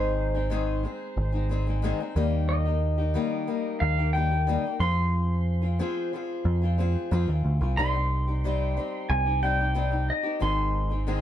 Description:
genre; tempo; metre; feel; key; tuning
folk rock and heartland rock; 91 BPM; 4/4; straight; C minor; A4 = 436 Hz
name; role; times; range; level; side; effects
pedal steel guitar; melody; 0.0-11.2 s; C5 to C6; -30 LUFS; equal; none
picked old ladder-braced acoustic guitar; accompaniment; 0.0-11.2 s; Ab2 to Ab4; -30 LUFS; left 4 dB; none
deep dub picked electric bass; bass; 0.0-11.2 s; Ab1 to F2; -25 LUFS; right 1 dB; none
room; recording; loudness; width
light reverb; dark, warm production; -24 LUFS; side -11 dB against mid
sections
0.0-11.2 A section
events
none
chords
0.0 Ab; 2.2 Eb; 4.8 Fm; 7.8 Cm; 10.4 Ab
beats
0.51 1.17 1.83 | 2.49 3.15 3.81 4.47 | 5.13 5.79 6.45 7.11 | 7.77 8.44 9.10 9.76 | 10.42 11.09

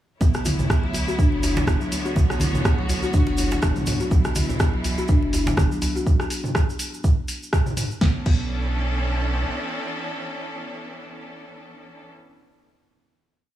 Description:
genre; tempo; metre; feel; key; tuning
afro house; 123 BPM; 4/4; swing 55% on 16ths; B minor; A4 = 439 Hz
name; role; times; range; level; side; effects
clear studio string section; sustained chords; 0.2-12.1 s; B2 to C#5; -31 LUFS; equal; sidechain pumping
kalimba; arpeggios; 0.2-8.4 s; F#3 to F#4; -28 LUFS; left 2 dB; sidechain pumping, digital delay
warm sub bass; bass; 0.2-9.4 s; F#1 to B1; -26 LUFS; equal; tube saturation, sidechain pumping
electronic kick drum; drums; 0.2-8.4 s; none; -20 LUFS; right 1 dB; none
congas; percussion; 0.2-5.9 s; none; -31 LUFS; left 2 dB; none
djembe; percussion; 0.2-5.9 s; none; -31 LUFS; right 4 dB; none
tube shaker; percussion; 0.2-8.0 s; none; -36 LUFS; right 4 dB; none
deep house drum kit; drums; 0.3-8.4 s; crash cymbal, hi-hat, rim click, snare drum, toms; -27 LUFS; equal; none
room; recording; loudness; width
light reverb, small room reverb; small room ambience; -20 LUFS; side -12 dB against mid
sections
0.2-8.0 drop; 8.0-11.9 final chord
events
drop 0.2-8.0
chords
0.2 Bm11; 4.1 E5; 8.0 Bm11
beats
| 0.21 0.70 1.19 1.68 | 2.16 2.65 3.14 3.63 | 4.12 4.60 5.09 5.58 | 6.07 6.55 7.04 7.53 | 8.02 8.51 8.99 9.48 | 9.97 10.46 10.95 11.43

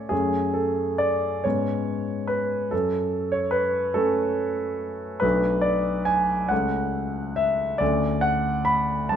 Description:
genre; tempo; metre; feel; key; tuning
classical, romantic nocturne for solo piano; 43-49 BPM (dotted quarters); 12/8; rubato; unclear; A4 = 439 Hz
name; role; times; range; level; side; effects
warm concert grand piano; solo; 0.0-9.2 s; B1 to B5; -22 LUFS; equal; none
room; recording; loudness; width
moderate large studio reverb, RT60 1.2 s; none; -22 LUFS; side -8 dB against mid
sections
0.0-9.2 A section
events
none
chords
0.1 F#m; 1.4 C#5/G#; 2.7 F#m; 5.2 Bm7; 6.5 A/C#; 7.8 D5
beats
| 0.12 1.45 2.72 3.98 | 5.24 6.51 7.81 9.11

